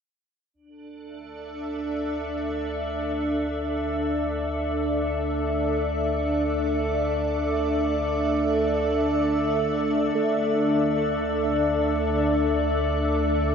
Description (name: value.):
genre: ambient.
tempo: free time.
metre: none.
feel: none.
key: unclear.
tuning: A4 = 443 Hz.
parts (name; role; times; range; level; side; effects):
glassy FM pad; sustained chords; 0.8-13.5 s; D4 to E5; -23 LUFS; left 1 dB; ensemble chorus, built-in reverb.
warm sub bass; bass; 0.5-13.5 s; D2; -32 LUFS; equal; none.
organ-like drone; drone; 1.3-13.5 s; D3 to A3; -35 LUFS; right 3 dB; ensemble chorus, built-in reverb.
muted felt-like synth keys; arpeggios; 10.1-13.5 s; A4; -32 LUFS; right 3 dB; chorus, tape echo.
room: wet huge ambient reverb, RT60 7.1 s.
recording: dreamy mix soaked in reverb.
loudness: -22 LUFS.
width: side -6 dB against mid.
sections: 0.6-13.5 A section.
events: fade-in on sub bass 0.6-13.5; fade-in on synth drone 0.6-13.5.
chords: 0.6 Dsus2.